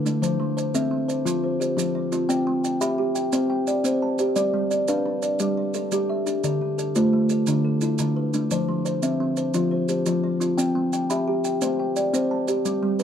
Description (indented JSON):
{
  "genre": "southern african traditional, mbira-style interlocking cycle",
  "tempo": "116 BPM (dotted quarters)",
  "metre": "12/8",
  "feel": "straight",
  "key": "unclear",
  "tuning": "A4 = 440 Hz",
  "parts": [
    { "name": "kalimba", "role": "arpeggios", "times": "0.0-13.0 s", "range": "D3 to G5", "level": "-22 LUFS", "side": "left 2 dB", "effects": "none" },
    { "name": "kalimba", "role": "arpeggios", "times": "0.0-13.0 s", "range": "D3 to B5", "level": "-26 LUFS", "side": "right 3 dB", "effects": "none" },
    { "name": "maracas", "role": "percussion", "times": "0.1-13.0 s", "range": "none", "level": "-34 LUFS", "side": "right 8 dB", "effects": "none" }
  ],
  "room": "light reverb",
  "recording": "dark, warm production",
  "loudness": "-21 LUFS",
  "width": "side -8 dB against mid",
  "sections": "0.0-12.7 A section",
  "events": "none",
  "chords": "0.2 F; 2.3 C; 4.4 G; 6.4 Dm; 8.5 F5; 10.6 C"
}